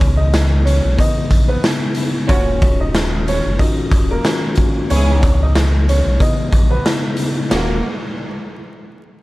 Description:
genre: hip hop, boom-bap hip-hop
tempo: 92 BPM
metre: 4/4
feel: swing 55% on 16ths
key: Eb phrygian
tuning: A4 = 440 Hz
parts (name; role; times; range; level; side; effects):
- clear upright piano; melody; 0.0-7.8 s; Bb3 to Eb5; -23 LUFS; right 1 dB; high-pass filter, low-pass filter, slapback echo
- mellow tine electric piano; accompaniment; 0.0-7.8 s; Db3 to Gb4; -22 LUFS; left 2 dB; medium stereo tremolo, cassette tape, high-pass filter, low-pass filter
- sub bass with octave; bass; 0.0-7.8 s; Eb1 to Db2; -16 LUFS; equal; none
- raw garage drum kit; drums; 0.0-7.7 s; hi-hat, kick drum, ride cymbal, snare drum; -17 LUFS; equal; none
- warm studio string section; stabs; 2.3-7.8 s; Db3 to Ab4; -26 LUFS; right 2 dB; high-pass filter, low-pass filter, slapback echo
room: small room reverb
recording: vinyl crackle, lossy compression artefacts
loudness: -13 LUFS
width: side -19 dB against mid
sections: 0.0-7.5 A section; 7.5-9.2 B section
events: none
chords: 0.0 Dbm9; 2.3 Ebm9; 4.9 Dbm9; 7.5 Ebm9

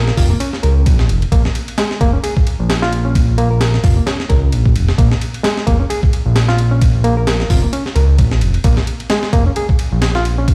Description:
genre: breakbeat, breaks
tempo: 131 BPM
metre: 4/4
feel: swing 57% on 16ths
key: Bb minor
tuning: A4 = 439 Hz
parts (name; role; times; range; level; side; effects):
- barky reed electric piano; riff; 0.0-10.5 s; Ab3 to Bb4; -23 LUFS; equal; overdrive, delay
- fat analog bass; bass; 0.0-10.5 s; F1 to Db2; -16 LUFS; equal; none
- breakbeat sampler-style drum kit; drums; 0.1-10.5 s; hi-hat, kick drum, ride cymbal, snare drum; -18 LUFS; equal; none
room: digital ambience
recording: played on a big sound system in a bare room, stone room reverb, vinyl crackle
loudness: -15 LUFS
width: mono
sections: 0.0-10.5 A section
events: none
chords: 0.0 Bbm

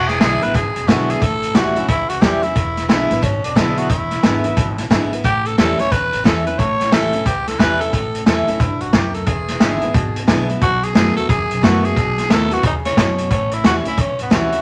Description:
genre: rockabilly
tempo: 179 BPM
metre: 4/4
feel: swing 63% on 8ths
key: E mixolydian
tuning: A4 = 440 Hz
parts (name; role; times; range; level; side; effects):
- raspy tenor saxophone; melody; 0.0-14.6 s; B3 to C#5; -23 LUFS; equal; none
- picked steel-string acoustic guitar; accompaniment; 0.0-14.6 s; E2 to F#4; -24 LUFS; equal; none
- upright bass; bass; 0.0-14.6 s; E1 to F#2; -28 LUFS; equal; none
- vintage drum kit; drums; 0.1-14.6 s; hi-hat, kick drum, snare drum; -20 LUFS; equal; none
room: light reverb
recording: vinyl crackle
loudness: -17 LUFS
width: mono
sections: 0.0-14.6 A section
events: none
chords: 0.0 E7; 1.2 A7; 2.6 E7; 5.2 A7; 9.3 E7; 10.6 B7; 13.3 A7

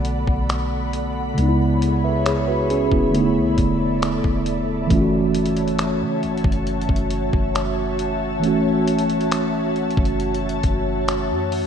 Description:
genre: contemporary R&B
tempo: 68 BPM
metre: 4/4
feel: straight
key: F# minor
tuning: A4 = 439 Hz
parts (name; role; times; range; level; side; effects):
- mellow tine electric piano; accompaniment; 0.0-11.7 s; C#3 to E5; -21 LUFS; right 1 dB; medium stereo tremolo
- ethereal airy pad; sustained chords; 0.0-11.7 s; F#4 to B5; -25 LUFS; left 1 dB; ensemble chorus, built-in reverb
- soft 808-style bass; bass; 0.0-11.7 s; E1 to C#3; -26 LUFS; left 1 dB; none
- dusty soul sampler-style drum kit; drums; 0.0-11.7 s; finger snaps, hi-hat, kick drum; -24 LUFS; left 1 dB; none
room: moderate lush hall reverb, RT60 2.5 s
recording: rough home demo mix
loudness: -18 LUFS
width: side -8 dB against mid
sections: 0.0-4.9 A section; 4.9-11.7 B section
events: none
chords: 0.0 Bm7; 1.4 C#m7; 3.1 E7sus4; 4.9 F#m7

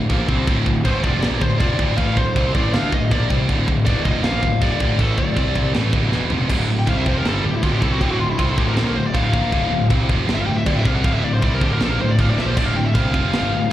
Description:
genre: heavy metal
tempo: 159 BPM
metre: 4/4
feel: straight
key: D minor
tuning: A4 = 440 Hz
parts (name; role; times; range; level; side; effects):
- distorted electric guitar; riff; 0.0-13.7 s; D2 to D4; -29 LUFS; equal; none
- heavy high-gain guitar; riff; 0.0-13.7 s; D2 to D4; -24 LUFS; right 7 dB; distortion
- high-gain distorted guitar; riff; 0.0-13.7 s; D2 to D4; -26 LUFS; left 7 dB; distortion, slapback echo
- fuzz picked electric bass; bass; 0.0-13.7 s; D1 to D2; -20 LUFS; equal; overdrive
- tight metal drum kit; drums; 0.1-13.4 s; crash cymbal, kick drum, snare drum, splash cymbal, toms; -23 LUFS; equal; none
- smooth overdriven lead guitar; melody; 0.8-13.7 s; E4 to G5; -26 LUFS; left 2 dB; slapback echo, ping-pong delay
room: little or no reverb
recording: live gig heard through the venue's PA, recital hall reverb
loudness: -16 LUFS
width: side -13 dB against mid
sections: 0.0-6.5 A section; 6.5-13.7 B section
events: drum fill 6.1-6.5, 12.4; lead electric guitar solo 6.5-13.7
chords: 0.0 Dm

